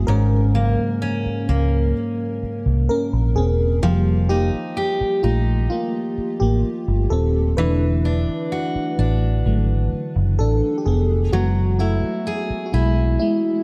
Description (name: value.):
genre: contemporary R&B.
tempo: 64 BPM.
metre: 4/4.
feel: straight.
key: unclear.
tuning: A4 = 440 Hz.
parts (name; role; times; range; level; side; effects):
FM electric piano with soft pad layer; accompaniment; 0.0-13.6 s; C#3 to B4; -26 LUFS; equal; chorus, tremolo.
picked steel-string acoustic guitar; arpeggios; 0.0-13.6 s; G#2 to G#4; -27 LUFS; equal; digital delay.
vintage muted fingered electric bass; bass; 0.0-13.2 s; Eb1 to C#2; -21 LUFS; equal; none.
room: light reverb, studio reverb.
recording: dark, warm production.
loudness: -20 LUFS.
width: mono.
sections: 0.0-13.6 A section.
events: FM electric piano solo 0.0-13.6.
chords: 0.1 G#9sus4; 3.8 F9sus4; 7.6 E9sus4; 11.3 F#9sus4.